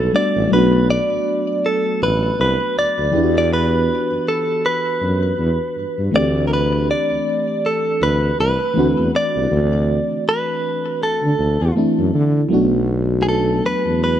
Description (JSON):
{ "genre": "contemporary R&B", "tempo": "80 BPM", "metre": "4/4", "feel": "swing 58% on 16ths", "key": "unclear", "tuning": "A4 = 440 Hz", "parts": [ { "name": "direct-recorded clean electric guitar", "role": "melody", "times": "0.0-14.2 s", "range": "Ab4 to D5", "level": "-19 LUFS", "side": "right 1 dB", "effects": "none" }, { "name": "mellow FM electric piano", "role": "accompaniment", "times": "0.0-14.2 s", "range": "E3 to G4", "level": "-21 LUFS", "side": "left 1 dB", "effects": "chorus" }, { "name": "warm tuba", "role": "bass", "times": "0.0-14.2 s", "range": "A1 to D3", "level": "-19 LUFS", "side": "equal", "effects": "none" } ], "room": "light reverb, small room ambience", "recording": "dark, warm production", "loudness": "-16 LUFS", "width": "side -10 dB against mid", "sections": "0.0-12.5 A section; 12.5-14.2 B section", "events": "none", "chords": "0.0 Gmaj7; 0.5 Bm7; 3.1 Em7; 6.1 D7sus4; 8.8 D7; 12.5 Bm7" }